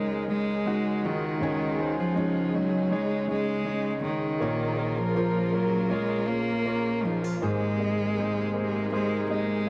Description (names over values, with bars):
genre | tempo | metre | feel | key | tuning
pop | 80 BPM | 4/4 | straight | Db major | A4 = 440 Hz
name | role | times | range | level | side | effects
rich cello | melody | 0.0-9.7 s | Eb3 to Bb3 | -30 LUFS | equal | cassette tape
clear concert grand piano | accompaniment | 0.0-9.7 s | Ab1 to Eb5 | -34 LUFS | equal | none
warm studio string section | sustained chords | 0.0-9.7 s | C3 to Bb4 | -37 LUFS | equal | none
fingerpicked steel-string acoustic guitar | arpeggios | 0.0-9.7 s | Ab2 to Bb4 | -36 LUFS | equal | none
room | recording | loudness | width
wet studio reverb, RT60 0.6 s | home recording on cassette | -27 LUFS | mono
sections
0.0-9.7 A section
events
none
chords
0.0 Dbsus2; 4.4 Bbm; 7.4 Abadd9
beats
0.67 | 1.42 2.17 2.92 3.67 | 4.42 5.17 5.92 6.67 | 7.42 8.17 8.92 9.67